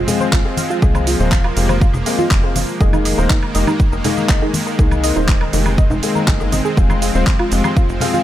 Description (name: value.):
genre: progressive house.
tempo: 121 BPM.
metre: 4/4.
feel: straight.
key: unclear.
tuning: A4 = 441 Hz.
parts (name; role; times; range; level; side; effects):
supersaw pad; sustained chords; 0.0-8.2 s; Eb3 to C4; -22 LUFS; right 1 dB; sidechain pumping.
tight sequencer bass; bass; 0.0-8.0 s; Eb1 to C2; -20 LUFS; equal; sidechain pumping.
dark grand piano; stabs; 0.1-8.2 s; Ab3 to C5; -22 LUFS; left 5 dB; vintage 12-bit sampler grit, sidechain pumping, dub echo.
house drum kit; drums; 0.1-8.2 s; handclaps, hi-hat, shaker, woodblock; -23 LUFS; right 2 dB; none.
congas and woodblock; percussion; 0.1-8.2 s; none; -26 LUFS; left 2 dB; sidechain pumping on perc.
soft round pluck; arpeggios; 0.2-8.2 s; Eb4 to C6; -23 LUFS; right 2 dB; analog chorus, sidechain pumping, dub echo.
electronic kick drum; drums; 0.3-7.9 s; none; -15 LUFS; equal; none.
room: little or no reverb.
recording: none.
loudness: -13 LUFS.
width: side -13 dB against mid.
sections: 0.0-8.2 A section.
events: none.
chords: 0.0 Ebsus4; 6.8 Fm.